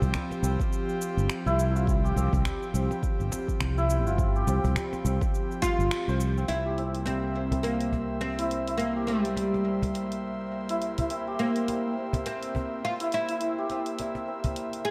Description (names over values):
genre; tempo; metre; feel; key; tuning
organic downtempo; 104 BPM; 4/4; swing 58% on 16ths; C major; A4 = 441 Hz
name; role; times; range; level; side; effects
airy breathy pad; sustained chords; 0.0-14.9 s; F3 to E5; -37 LUFS; equal; chorus, sidechain pumping
santur; arpeggios; 0.0-14.9 s; G3 to C5; -36 LUFS; equal; low-pass filter, digital delay
fretless electric bass; bass; 0.0-14.9 s; G1 to C2; -31 LUFS; equal; none
deep house drum kit; drums; 0.0-14.8 s; cabasa, finger snaps, hi-hat; -41 LUFS; equal; none
cajon; percussion; 0.0-14.5 s; none; -34 LUFS; equal; none
electronic kick drum; drums; 0.6-5.8 s; none; -31 LUFS; equal; none
oud; melody; 5.6-14.9 s; G3 to Ab4; -32 LUFS; equal; delay
room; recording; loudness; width
moderate echo chamber reverb, RT60 2.2 s; dark, warm production; -28 LUFS; mono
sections
0.0-6.5 A section; 6.5-14.9 B section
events
band accent 5.9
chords
0.0 Csus4; 6.5 C7